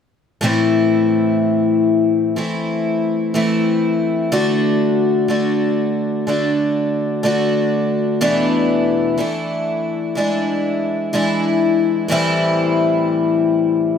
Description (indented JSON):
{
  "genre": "folk",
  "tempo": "62 BPM",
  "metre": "4/4",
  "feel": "straight",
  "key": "A dorian",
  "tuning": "A4 = 441 Hz",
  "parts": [
    { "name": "picked twelve-string acoustic guitar", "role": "accompaniment", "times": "0.4-14.0 s", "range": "E2 to F#4", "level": "-15 LUFS", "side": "left 2 dB", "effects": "none" }
  ],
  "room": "moderate large studio reverb, RT60 1.0 s",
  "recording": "none",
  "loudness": "-15 LUFS",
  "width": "side -7 dB against mid",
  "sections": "0.4-14.0 A section",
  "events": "none",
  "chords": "0.4 Am; 4.3 D; 8.2 E7sus4; 10.2 E7; 12.1 Am7"
}